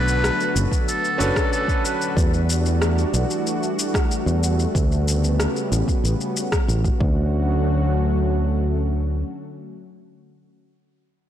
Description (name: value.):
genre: sunset chillout.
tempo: 93 BPM.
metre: 4/4.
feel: straight.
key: D major.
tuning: A4 = 440 Hz.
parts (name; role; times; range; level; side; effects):
trumpet with metal mute; melody; 0.0-2.2 s; A4 to B4; -26 LUFS; equal; ping-pong delay.
bright concert grand piano; accompaniment; 0.0-2.2 s; B3 to B4; -26 LUFS; equal; auto-pan, ping-pong delay.
lush unison pad; sustained chords; 0.0-10.6 s; C#3 to B4; -26 LUFS; equal; chorus, vintage 12-bit sampler grit.
fingered electric bass; bass; 0.0-9.2 s; F#1 to E2; -20 LUFS; equal; transformer saturation.
electronic shaker and rim click; drums; 0.1-7.0 s; none; -28 LUFS; left 2 dB; overdrive.
electronic kick drum; drums; 0.7-7.1 s; none; -22 LUFS; equal; overdrive.
room: light reverb.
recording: blown-out, overdriven recording, overdrive.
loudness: -19 LUFS.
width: side -10 dB against mid.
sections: 0.0-7.3 A section; 7.3-9.9 B section.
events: none.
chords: 0.0 Bm7; 2.2 Em11; 4.7 Gmaj9#11; 7.0 Dmaj7.